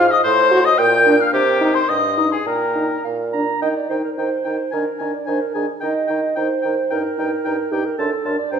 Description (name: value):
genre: quick classical-period movement for wind quintet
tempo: 110 BPM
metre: 2/4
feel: rubato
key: Eb major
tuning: A4 = 440 Hz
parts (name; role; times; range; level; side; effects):
- mellow hollow silver concert flute; melody; 0.0-8.6 s; G5 to G6; -21 LUFS; left 6 dB; none
- warm oboe; second line; 0.0-8.6 s; G4 to A5; -23 LUFS; left 3 dB; none
- dark clarinet; accompaniment; 0.0-8.6 s; G4 to Bb5; -22 LUFS; right 5 dB; none
- warm French horn; accompaniment; 0.0-8.6 s; D4 to F#4; -23 LUFS; left 1 dB; none
- mellow bassoon; bass; 0.0-8.6 s; F#2 to Eb3; -23 LUFS; right 2 dB; none
room: wet recital hall reverb, RT60 1.6 s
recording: minimal, uncompressed stereo recording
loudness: -16 LUFS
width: side -7 dB against mid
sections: 0.0-3.6 A section; 3.6-8.6 B section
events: none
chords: 0.2 Adim7; 0.8 Bb; 1.3 Cm; 2.5 Eb/Bb; 3.0 Bb; 3.6 Eb; 4.7 Bb7/Eb; 5.8 Eb; 6.9 Eb/G; 8.0 D/F#